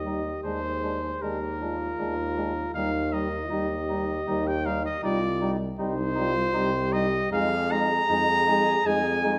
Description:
classical, brass quintet; 79 BPM; 3/4; rubato; Eb major; A4 = 437 Hz
clear trumpet; melody; 0.0-9.4 s; Bb4 to Bb5; -30 LUFS; equal
clear French horn; accompaniment; 0.0-9.4 s; Eb4 to Ab4; -34 LUFS; equal
clear euphonium; accompaniment; 0.0-9.4 s; G3 to Ab3; -35 LUFS; equal
clear bass trombone; bass; 0.0-9.4 s; C2 to F2; -33 LUFS; equal
mellow flugelhorn; second line; 0.1-9.4 s; D4 to Eb4; -38 LUFS; equal
wet recital hall reverb, RT60 1.4 s; -26 LUFS; mono
0.0-9.4 A section
0.4 Bb7/Eb; 2.7 Eb; 5.0 Cm; 7.3 Fm7

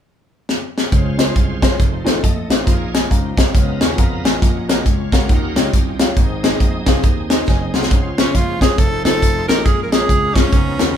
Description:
uptempo gospel; 137 BPM; 4/4; swing 61% on 8ths; Db major; A4 = 440 Hz
tight funk drum kit; drums; 0.5-10.9 s; hi-hat, kick drum, snare drum; -15 LUFS; equal
clear baby grand piano; accompaniment; 0.9-11.0 s; Ab2 to Db6; -24 LUFS; left 1 dB
bright tonewheel organ; sustained chords; 0.9-11.0 s; F3 to Ab5; -28 LUFS; right 2 dB; slow rotary speaker, overdrive, chorus vibrato
dry thumbed slap bass; bass; 0.9-10.9 s; F1 to F2; -24 LUFS; right 1 dB
bright tenor saxophone; melody; 8.2-11.0 s; Db4 to Bb4; -19 LUFS; right 1 dB
light reverb; band playing live in one room; -14 LUFS; side -9 dB against mid
0.9-7.9 A section; 7.9-11.0 B section
drum fill 0.5-0.9, 7.5-7.9; tonewheel organ fill 7.3-7.9
0.0 N.C.; 0.9 Dbmaj7; 1.8 F7; 2.7 Bbm7; 3.5 Db13; 4.4 Gb6/Bb; 5.3 Eb9; 6.2 Ab; 7.9 Dbmaj7; 8.8 F7; 9.7 Bbm7

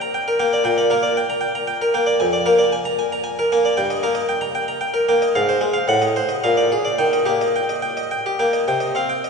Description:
classical, baroque-style suite movement for harpsichord; 105-118 BPM; 3/4; rubato; Eb major; A4 = 440 Hz
harpsichord; solo; 0.0-9.3 s; F2 to Bb5; -17 LUFS; equal
wet cathedral reverb, RT60 5.8 s; recorded in a church or concert hall, nothing above 10.6 kHz; -17 LUFS; side -5 dB against mid
0.0-8.7 A section
0.0 Gm; 2.2 Bb7/F; 3.8 Eb/G; 5.4 Fm/Ab; 5.9 Adim7; 6.4 Bb7; 7.0 Eb; 8.7 Cm

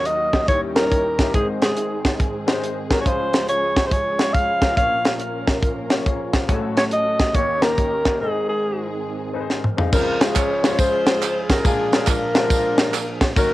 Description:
uptempo gospel; 140 BPM; 4/4; swing 64% on 8ths; Db major; A4 = 441 Hz
breathy alto saxophone; melody; 0.0-8.9 s; Ab4 to F5; -21 LUFS; equal; cassette tape, analog delay
clear baby grand piano; accompaniment; 0.0-13.5 s; Ab1 to F5; -27 LUFS; left 6 dB; cassette tape
dark studio string section; sustained chords; 0.0-9.9 s; Eb3 to Bb4; -31 LUFS; left 1 dB; cassette tape
percussive tonewheel organ; sustained chords; 0.0-13.5 s; A2 to Eb5; -32 LUFS; right 6 dB; slow rotary speaker, overdrive, chorus vibrato, cassette tape
tight funk drum kit; drums; 0.1-13.5 s; crash cymbal, hi-hat, kick drum, ride cymbal, snare drum, toms; -20 LUFS; equal
clear saxophone section; melody; 9.9-13.5 s; Db4 to Db5; -21 LUFS; equal; cassette tape
tambourine and handclaps; percussion; 9.9-13.5 s; -29 LUFS; right 8 dB
light reverb; home recording on cassette; -17 LUFS; side -16 dB against mid
0.0-9.9 A section; 9.9-13.5 B section
break 8.2-9.9; drum fill 9.5-9.9
0.5 Eb7b9; 1.3 Ab; 3.1 Db; 4.8 Bbm; 6.5 Gbm/A; 7.3 Eb7; 8.2 Ab; 9.9 Dbmaj7; 11.6 Bb7

